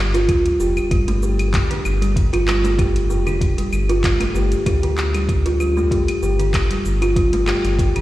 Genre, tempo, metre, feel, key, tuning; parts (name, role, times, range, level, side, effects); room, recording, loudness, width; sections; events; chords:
organic downtempo; 96 BPM; 4/4; swing 54% on 16ths; A4 = 439 Hz
buzzing kalimba; arpeggios; 0.0-8.0 s; D3 to G4; -20 LUFS; right 1 dB; digital delay
warm sub bass; bass; 0.0-8.0 s; F1 to D2; -20 LUFS; equal
afro-pop drum kit; drums; 0.1-8.0 s; claves, handclaps, hi-hat, shaker; -27 LUFS; left 1 dB; studio reverb
electronic kick drum; drums; 0.3-7.9 s; -20 LUFS; equal; overdrive, studio reverb
moderate lush hall reverb, RT60 2.0 s; played on a big sound system in a bare room, stone room reverb; -16 LUFS; side -16 dB against mid
0.0-8.0 A section
0.0 G5